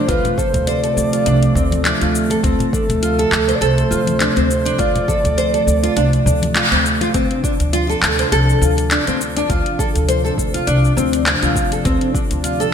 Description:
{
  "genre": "organic downtempo",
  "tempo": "102 BPM",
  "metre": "4/4",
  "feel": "swing 56% on 16ths",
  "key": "D minor",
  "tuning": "A4 = 440 Hz",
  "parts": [
    { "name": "breathy flute-like synth lead", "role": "melody", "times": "0.0-6.6 s", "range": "A4 to D5", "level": "-21 LUFS", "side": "right 1 dB", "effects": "chorus, ping-pong delay" },
    { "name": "warm analog pad", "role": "sustained chords", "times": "0.0-12.7 s", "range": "C3 to D4", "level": "-22 LUFS", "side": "right 1 dB", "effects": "chorus, sidechain pumping" },
    { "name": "nylon-string guitar", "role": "arpeggios", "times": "0.0-12.7 s", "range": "C4 to C5", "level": "-20 LUFS", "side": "left 1 dB", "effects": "wide subtle chorus, ping-pong delay" },
    { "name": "upright bass", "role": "bass", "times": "0.1-12.7 s", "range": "C2 to D2", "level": "-19 LUFS", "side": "equal", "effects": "none" },
    { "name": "afro-pop drum kit", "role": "drums", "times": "0.1-12.7 s", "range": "handclaps, hi-hat, shaker", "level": "-21 LUFS", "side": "left 1 dB", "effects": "gated reverb" },
    { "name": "electronic kick drum", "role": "drums", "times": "0.1-12.3 s", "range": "none", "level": "-21 LUFS", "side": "equal", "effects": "overdrive" },
    { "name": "congas", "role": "percussion", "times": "0.2-7.1 s", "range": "none", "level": "-25 LUFS", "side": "left 1 dB", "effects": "none" }
  ],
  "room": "moderate lush hall reverb, RT60 2.1 s",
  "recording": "bright 1980s-style digital production",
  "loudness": "-14 LUFS",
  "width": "side -8 dB against mid",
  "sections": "0.0-7.1 A section; 7.1-12.7 B section",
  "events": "kick drops out 6.0-7.1; band accent 6.6",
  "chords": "0.0 Dm7",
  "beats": "| 0.09 0.67 1.26 1.85 | 2.44 3.03 3.61 4.20 | 4.79 5.38 5.97 6.56 | 7.14 7.73 8.32 8.91 | 9.50 10.09 10.67 11.26 | 11.85 12.44"
}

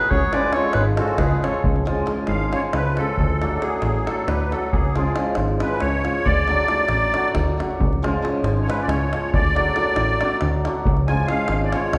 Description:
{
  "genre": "balkan folk, Balkan wedding band",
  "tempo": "273 BPM (eighths)",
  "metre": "7/8",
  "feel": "straight",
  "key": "C# phrygian dominant",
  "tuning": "A4 = 440 Hz",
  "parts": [
    { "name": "clear clarinet", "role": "melody", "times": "0.0-1.6 s", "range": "A4 to D5", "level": "-25 LUFS", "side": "equal", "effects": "none" },
    { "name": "musette accordion", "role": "second line", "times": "0.0-12.0 s", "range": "F#4 to G#5", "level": "-26 LUFS", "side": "equal", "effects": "none" },
    { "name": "hammered dulcimer", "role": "accompaniment", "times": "0.0-12.0 s", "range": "E#3 to F#4", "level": "-27 LUFS", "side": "equal", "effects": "none" },
    { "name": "plucky analog bass", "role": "bass", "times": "0.1-12.0 s", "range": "G#1 to D2", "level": "-26 LUFS", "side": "equal", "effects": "none" },
    { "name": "davul", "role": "percussion", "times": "0.1-12.0 s", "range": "none", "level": "-28 LUFS", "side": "equal", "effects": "none" }
  ],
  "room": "wet recital hall reverb, RT60 1.4 s",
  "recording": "recorded in a church or concert hall",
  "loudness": "-21 LUFS",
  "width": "mono",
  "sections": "0.0-1.6 A section; 1.6-12.0 B section",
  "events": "accordion solo 1.6-12.0",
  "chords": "0.1 C#; 3.2 D; 4.7 C#; 6.3 D; 7.8 C#; 9.3 D; 10.9 C#",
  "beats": "| 0.11 0.33 0.55 0.77 0.99 1.21 1.43 | 1.65 1.87 2.09 2.31 2.53 2.75 2.97 | 3.19 3.41 3.63 3.85 4.07 4.29 4.51 | 4.73 4.95 5.17 5.39 5.61 5.83 6.05 | 6.27 6.49 6.71 6.93 7.15 7.37 7.58 | 7.80 8.02 8.24 8.46 8.68 8.90 9.12 | 9.34 9.55 9.77 9.99 10.21 10.43 10.65 | 10.86 11.08 11.30 11.52 11.73 11.95"
}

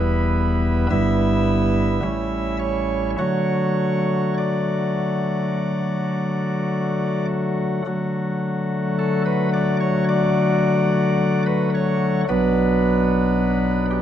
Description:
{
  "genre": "classical, chorale-style piece for pipe organ",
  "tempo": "50-56 BPM",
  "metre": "4/4",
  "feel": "rubato",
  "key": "D major",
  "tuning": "A4 = 440 Hz",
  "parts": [
    { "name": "chamber organ, cornet", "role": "solo", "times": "0.0-14.0 s", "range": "E1 to E5", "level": "-18 LUFS", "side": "equal", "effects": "none" }
  ],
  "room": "moderate stone room reverb, RT60 1.2 s",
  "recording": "dark, warm production",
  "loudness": "-18 LUFS",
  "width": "side -10 dB against mid",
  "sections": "0.0-7.9 A section; 7.9-14.0 B section",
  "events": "none",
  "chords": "0.0 Em; 0.9 Em/G; 2.0 A7; 3.2 D; 12.3 Bm",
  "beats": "0.91 2.04 | 3.20 4.39 5.57 6.72 | 7.87 8.98 10.08 11.19 | 12.29 13.36"
}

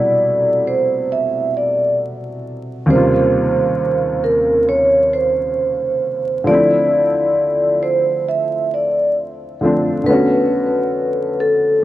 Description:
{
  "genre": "hip hop",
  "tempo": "67 BPM",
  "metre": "4/4",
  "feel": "swing 62% on 16ths",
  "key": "unclear",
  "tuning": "A4 = 439 Hz",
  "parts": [
    { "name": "vibraphone with medium mallets", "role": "melody", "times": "0.0-11.8 s", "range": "A4 to E5", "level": "-15 LUFS", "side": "right 1 dB", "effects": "low-pass filter" },
    { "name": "warm upright piano", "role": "accompaniment", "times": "0.0-11.8 s", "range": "D#2 to F#4", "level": "-19 LUFS", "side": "left 1 dB", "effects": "low-pass filter" }
  ],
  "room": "light reverb, small room ambience",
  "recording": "vinyl crackle",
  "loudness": "-14 LUFS",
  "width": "side -14 dB against mid",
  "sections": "0.0-11.8 A section",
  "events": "none",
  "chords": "0.0 Am9; 2.9 D#13; 6.5 Dm9; 10.1 Bm7",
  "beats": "0.21 1.11 2.00 | 2.90 3.79 4.69 5.58 | 6.48 7.38 8.27 9.17 | 10.06 10.96"
}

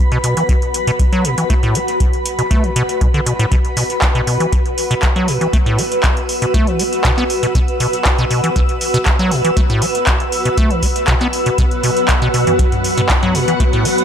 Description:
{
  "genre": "acid house",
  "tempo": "119 BPM",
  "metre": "4/4",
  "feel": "straight",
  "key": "unclear",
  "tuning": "A4 = 440 Hz",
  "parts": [
    { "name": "granular cloud pad", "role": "texture", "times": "0.0-14.0 s", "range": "F#4 to E6", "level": "-19 LUFS", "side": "equal", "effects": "built-in reverb, sidechain pumping" },
    { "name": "deep acid bass", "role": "riff", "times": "0.1-13.9 s", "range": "B1 to B3", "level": "-19 LUFS", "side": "equal", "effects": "cassette tape, sidechain pumping, ping-pong delay" },
    { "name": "booming analog drum machine", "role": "drums", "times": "0.1-14.0 s", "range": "handclaps, hi-hat, toms", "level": "-20 LUFS", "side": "equal", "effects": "overdrive" },
    { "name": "electronic kick drum", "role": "drums", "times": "0.5-13.7 s", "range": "none", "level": "-16 LUFS", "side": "equal", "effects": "none" },
    { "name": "string machine, full ensemble", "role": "sustained chords", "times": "11.6-14.0 s", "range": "F#3 to F#5", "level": "-21 LUFS", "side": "equal", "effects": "ensemble chorus, sidechain pumping" }
  ],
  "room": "light reverb, digital ambience",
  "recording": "none",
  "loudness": "-13 LUFS",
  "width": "side -8 dB against mid",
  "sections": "0.0-14.0 A section",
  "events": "none",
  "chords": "0.0 B5",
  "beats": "0.49 0.99 | 1.50 2.00 2.51 3.01 | 3.52 4.02 4.52 5.03 | 5.53 6.04 6.54 7.04 | 7.55 8.05 8.56 9.06 | 9.57 10.07 10.57 11.08 | 11.58 12.09 12.59 13.10 | 13.60"
}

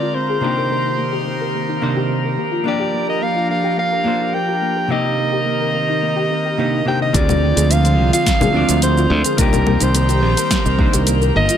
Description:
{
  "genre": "sunset chillout",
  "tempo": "107 BPM",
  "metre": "4/4",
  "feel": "straight",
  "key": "C minor",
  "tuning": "A4 = 439 Hz",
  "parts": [
    { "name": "breathy soprano saxophone", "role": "melody", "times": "0.0-11.6 s", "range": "Bb4 to G5", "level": "-21 LUFS", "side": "equal", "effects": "ping-pong delay" },
    { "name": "hollow-body jazz guitar", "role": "accompaniment", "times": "0.0-11.3 s", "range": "C3 to D5", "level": "-23 LUFS", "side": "moving between left 3 dB and right 6 dB", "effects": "auto-pan, digital delay" },
    { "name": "airy breathy pad", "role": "sustained chords", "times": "0.0-11.6 s", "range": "D3 to C5", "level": "-23 LUFS", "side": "right 1 dB", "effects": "chorus" },
    { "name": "soft round pluck", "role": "arpeggios", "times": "0.0-11.6 s", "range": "Bb3 to C5", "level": "-25 LUFS", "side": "left 4 dB", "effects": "ensemble chorus, digital delay" },
    { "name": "drifting glass-harmonics texture", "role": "texture", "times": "0.0-11.6 s", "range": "Bb4 to Bb5", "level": "-28 LUFS", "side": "left 1 dB", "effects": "chorus, built-in reverb" },
    { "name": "modern bright fingered electric bass", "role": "bass", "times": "7.1-11.5 s", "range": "G1 to D2", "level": "-16 LUFS", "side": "equal", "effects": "none" },
    { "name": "deep house drum kit", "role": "drums", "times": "7.1-11.6 s", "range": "congas, hi-hat, shaker, snare drum", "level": "-20 LUFS", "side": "left 2 dB", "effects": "overdrive" },
    { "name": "electronic kick drum", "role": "drums", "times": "7.1-10.9 s", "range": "none", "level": "-19 LUFS", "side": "equal", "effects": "overdrive" }
  ],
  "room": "light reverb",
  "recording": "none",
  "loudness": "-15 LUFS",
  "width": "side -9 dB against mid",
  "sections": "0.0-7.1 A section; 7.1-11.6 B section",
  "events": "none",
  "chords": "0.4 Cm7; 2.4 Gm7; 4.9 Cm7; 7.1 Dm7b5; 9.4 Cm7",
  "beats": "| 0.41 0.97 1.53 2.10 | 2.66 3.22 3.78 4.34 | 4.90 5.46 6.02 6.58 | 7.14 7.70 8.26 8.82 | 9.38 9.95 10.51 11.07"
}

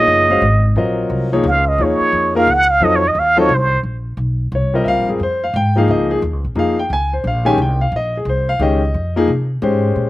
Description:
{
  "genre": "modal jazz",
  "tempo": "176 BPM",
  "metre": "3/4",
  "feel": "swing 64% on 8ths",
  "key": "Eb dorian, Bb dorian from 3.8 s",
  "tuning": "A4 = 440 Hz",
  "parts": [
    { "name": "trumpet with plunger mute", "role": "melody", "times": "0.0-3.8 s", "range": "C5 to Gb5", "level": "-14 LUFS", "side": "right 2 dB", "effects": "none" },
    { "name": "clear concert grand piano", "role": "accompaniment", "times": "0.0-10.1 s", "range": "Eb3 to Ab5", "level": "-17 LUFS", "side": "left 2 dB", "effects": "none" },
    { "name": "upright bass", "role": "bass", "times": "0.0-10.1 s", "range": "Gb1 to C3", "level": "-19 LUFS", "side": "equal", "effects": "none" }
  ],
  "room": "little or no reverb",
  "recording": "recorded outdoors, with no room sound",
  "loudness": "-13 LUFS",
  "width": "side -16 dB against mid",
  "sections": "0.0-3.8 A section; 3.8-10.1 A section",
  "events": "muted trumpet solo 0.0-3.8",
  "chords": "0.0 Ebm9; 2.8 F7b9; 3.8 Bbm9",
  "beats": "0.08 0.42 | 0.76 1.10 1.44 | 1.78 2.13 2.47 | 2.81 3.15 3.49 | 3.83 4.17 4.51 | 4.85 5.19 5.54 | 5.88 6.22 6.56 | 6.90 7.24 7.58 | 7.92 8.26 8.60 | 8.94 9.28 9.62 | 9.97"
}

